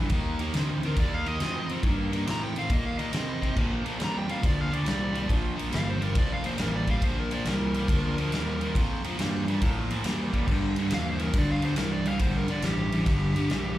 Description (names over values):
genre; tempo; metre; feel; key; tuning
blues rock power trio and southern rock; 139 BPM; 4/4; swing 67% on 8ths; unclear; A4 = 440 Hz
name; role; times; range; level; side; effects
crunchy overdriven guitar; riff; 0.0-13.8 s; G2 to C4; -30 LUFS; equal; none
fuzz picked electric bass; bass; 0.0-13.8 s; F1 to C3; -30 LUFS; equal; overdrive
huge arena drum kit; drums; 0.1-13.6 s; crash cymbal, kick drum, ride cymbal, snare drum; -29 LUFS; equal; none
dark smooth lead guitar; melody; 0.9-13.8 s; G4 to Bb5; -34 LUFS; equal; overdrive, slapback echo
room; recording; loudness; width
light reverb; live gig heard through the venue's PA, club reverb; -25 LUFS; side -14 dB against mid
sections
0.0-13.8 A section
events
lead electric guitar solo 0.0-13.8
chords
0.1 Eb; 3.6 Bb; 10.5 Gm